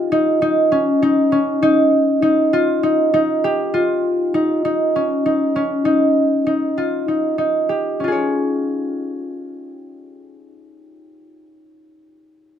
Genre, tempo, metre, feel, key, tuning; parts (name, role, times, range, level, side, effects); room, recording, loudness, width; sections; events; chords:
contemporary instrumental, contemporary; 198 BPM (eighths); 7/8; straight; Db lydian; A4 = 445 Hz
concert harp; solo; 0.0-11.5 s; Db4 to Db5; -16 LUFS; equal
light reverb; close, detailed microphones; -15 LUFS; side -9 dB against mid
0.0-3.7 A section; 3.7-8.0 B section; 8.0-12.3 C section
0.0 Dbadd9; 8.0 Db